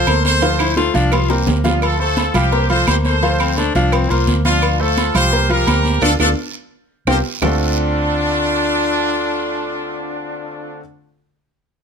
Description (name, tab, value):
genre	latin, salsa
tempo	171 BPM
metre	4/4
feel	straight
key	D minor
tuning	A4 = 440 Hz
part	clear horn section	melody	0.0-10.8 s	C4 to C5	-19 LUFS	equal	none
part	bright upright piano	accompaniment	0.0-10.8 s	D3 to F5	-22 LUFS	equal	none
part	vintage muted fingered electric bass	bass	0.0-10.8 s	C2 to D2	-19 LUFS	equal	none
part	agogo bells and timbales	percussion	0.1-7.5 s	none	-26 LUFS	right 5 dB	none
part	claves	percussion	0.1-7.5 s	none	-27 LUFS	right 9 dB	none
part	congas	percussion	0.1-7.5 s	none	-25 LUFS	right 1 dB	none
part	cowbell and bongos	percussion	0.1-7.5 s	none	-27 LUFS	left 8 dB	none
part	guiro	percussion	0.1-7.5 s	none	-30 LUFS	right 7 dB	none
part	breathy baritone saxophone	second line	0.6-10.8 s	C4 to F4	-23 LUFS	left 8 dB	none
room	light reverb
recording	close, detailed microphones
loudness	-14 LUFS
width	side -6 dB against mid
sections	0.0-7.4 A section; 7.4-10.2 B section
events	drum fill 0.4-1.8, 6.7-7.4; band accent 6.0-7.4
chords	0.4 Dm7; 1.1 C7sus4; 1.8 Dm7; 2.5 C7sus4; 3.2 Dm7; 3.9 C7sus4; 4.6 Dm7; 5.3 C7sus4; 6.0 Dm; 6.7 Csus4; 7.4 Dm7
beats	0.07 | 0.42 0.77 1.12 1.47 | 1.82 2.17 2.53 2.88 | 3.23 3.58 3.93 4.28 | 4.63 4.98 5.33 5.68 | 6.03 6.38 6.73 7.08 | 7.42 7.77 8.12 8.47 | 8.82 9.17 9.52 9.87